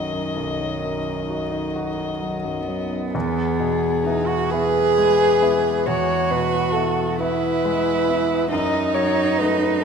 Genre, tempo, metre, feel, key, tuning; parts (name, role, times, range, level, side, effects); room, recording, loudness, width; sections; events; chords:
classical, slow romantic movement for piano trio; 41-47 BPM (dotted quarters); 12/8; rubato; E major; A4 = 441 Hz
dark violin; melody; 0.0-9.8 s; G#4 to D#5; -25 LUFS; left 6 dB
warm cello; second line; 0.0-9.8 s; D#3 to G#4; -22 LUFS; right 4 dB
clear concert grand piano; accompaniment; 0.0-9.8 s; B1 to F#4; -25 LUFS; equal
moderate scoring stage reverb, RT60 1.5 s; -19 LUFS; side -6 dB against mid
0.0-3.1 A section; 3.1-9.8 B section
0.0 B; 3.1 E; 8.5 D#dim/F#